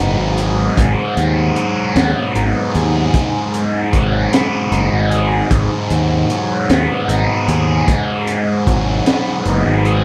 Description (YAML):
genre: psychedelic rock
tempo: 51 BPM (dotted quarters)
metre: 6/8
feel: straight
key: G# minor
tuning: A4 = 440 Hz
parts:
  - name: thick fuzz guitar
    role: riff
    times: 0.0-10.0 s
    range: G#2 to G#4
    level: -20 LUFS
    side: equal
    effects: distortion, phaser
  - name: fuzz picked electric bass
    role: bass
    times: 0.0-10.0 s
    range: F#1 to D#2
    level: -19 LUFS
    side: equal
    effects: overdrive
  - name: pedal harmonium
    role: drone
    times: 0.0-10.0 s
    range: G#2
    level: -27 LUFS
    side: equal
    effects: none
  - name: crunchy breakbeat drum kit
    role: drums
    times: 0.4-10.0 s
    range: hi-hat, kick drum, snare drum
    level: -21 LUFS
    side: equal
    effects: none
room: moderate plate reverb, RT60 2.8 s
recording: dreamy mix soaked in reverb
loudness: -16 LUFS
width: mono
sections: 0.0-10.0 A section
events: none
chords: 0.0 G#m7